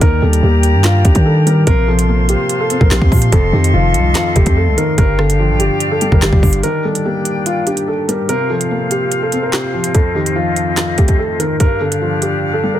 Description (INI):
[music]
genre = hip hop, drill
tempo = 145 BPM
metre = 4/4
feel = half-time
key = unclear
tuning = A4 = 440 Hz
[part]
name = dark baby grand piano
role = melody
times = 0.0-12.8 s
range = F4 to Bb4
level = -18 LUFS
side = equal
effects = low-pass filter
[part]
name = felt-muted upright piano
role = accompaniment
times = 0.0-12.8 s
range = F2 to D4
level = -19 LUFS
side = left 1 dB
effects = low-pass filter
[part]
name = bright small flute group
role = sustained chords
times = 0.0-12.8 s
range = C4 to C6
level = -22 LUFS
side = left 2 dB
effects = none
[part]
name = growling 808-style bass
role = bass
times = 0.0-6.6 s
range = F1 to Eb3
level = -13 LUFS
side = equal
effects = none
[part]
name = drill drum kit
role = drums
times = 0.0-12.3 s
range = handclaps, hi-hat, kick drum, rim click, snare drum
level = -14 LUFS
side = equal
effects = none
[sound]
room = small room ambience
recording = dense, heavily limited modern master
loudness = -12 LUFS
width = side -12 dB against mid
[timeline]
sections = 0.0-6.6 A section; 6.6-12.8 B section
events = none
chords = 0.0 Ebmaj7; 1.7 Bbsus2; 3.3 F7; 5.0 G7(no3); 6.6 Ebmaj7; 8.3 Bbsus2; 9.9 F7; 11.6 G5